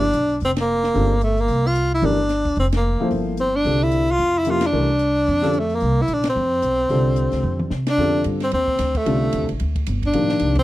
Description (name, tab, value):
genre	modal jazz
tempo	222 BPM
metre	4/4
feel	swing 59% on 8ths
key	unclear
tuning	A4 = 441 Hz
part	breathy tenor saxophone	melody	0.0-10.6 s	A3 to F4	-20 LUFS	equal	none
part	warm baby grand piano	accompaniment	0.0-10.5 s	C3 to C5	-24 LUFS	left 1 dB	none
part	upright bass	bass	0.0-10.6 s	F1 to C3	-22 LUFS	equal	none
part	compact cocktail drum kit	drums	0.1-10.6 s	hi-hat, kick drum, ride cymbal, snare drum, toms	-30 LUFS	left 1 dB	none
room	studio reverb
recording	dry, close 1970s-style studio recording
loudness	-17 LUFS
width	side -16 dB against mid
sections	0.0-8.0 A section; 8.0-10.6 B section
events	band accent 0.5, 2.7, 4.6, 6.2, 7.8; drum fill 7.4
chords	0.0 C7sus4; 3.7 Bbsus2/C; 8.0 F13